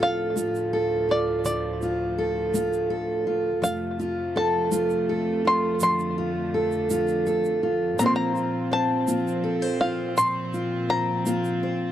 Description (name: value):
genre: acoustic folk duo or small band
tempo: 55 BPM (dotted quarters)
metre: 6/8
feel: straight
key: unclear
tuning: A4 = 441 Hz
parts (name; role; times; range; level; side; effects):
- bluegrass banjo; melody; 0.0-11.9 s; D5 to C6; -25 LUFS; left 2 dB; tape echo
- fingerpicked steel-string acoustic guitar; accompaniment; 0.0-11.9 s; A2 to C5; -25 LUFS; equal; none
- rich chamber string section; sustained chords; 0.0-11.9 s; D2 to C4; -30 LUFS; right 2 dB; none
- egg shaker; percussion; 0.4-11.5 s; none; -36 LUFS; right 7 dB; none
room: little or no reverb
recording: dry, close 1970s-style studio recording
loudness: -22 LUFS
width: side -11 dB against mid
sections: 0.0-11.9 A section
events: none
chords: 0.0 Dm; 3.6 F; 8.0 Bbsus2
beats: 0.34 | 1.44 2.53 | 3.62 4.71 | 5.81 6.90 | 7.99 9.08 | 10.16 11.25